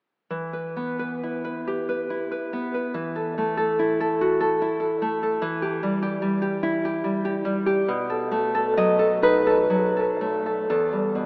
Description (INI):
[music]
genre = romantic piece for solo classical guitar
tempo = 38-50 BPM (dotted quarters)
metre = 6/8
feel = rubato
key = E minor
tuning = A4 = 440 Hz
[part]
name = nylon-string guitar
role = solo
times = 0.3-11.3 s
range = E2 to D#5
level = -24 LUFS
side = equal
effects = tape echo
[sound]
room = wet lush hall reverb, RT60 2.8 s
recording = rough home demo mix, AM radio sound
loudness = -24 LUFS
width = mono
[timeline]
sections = 0.3-10.7 A section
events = none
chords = 0.3 Em; 2.9 Esus24; 5.4 Em; 7.9 B7; 10.7 Em